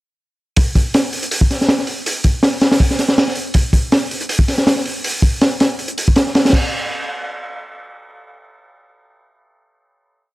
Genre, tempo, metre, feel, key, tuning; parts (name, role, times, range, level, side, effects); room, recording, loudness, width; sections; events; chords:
drum and bass; 161 BPM; 4/4; swing 55% on 16ths
crunchy breakbeat drum kit; drums; 0.6-6.6 s; crash cymbal, hi-hat, kick drum, snare drum; -14 LUFS; equal
little or no reverb; -14 LUFS; side -19 dB against mid
0.6-6.5 drop; 6.5-8.0 final hit
drop 0.6-6.5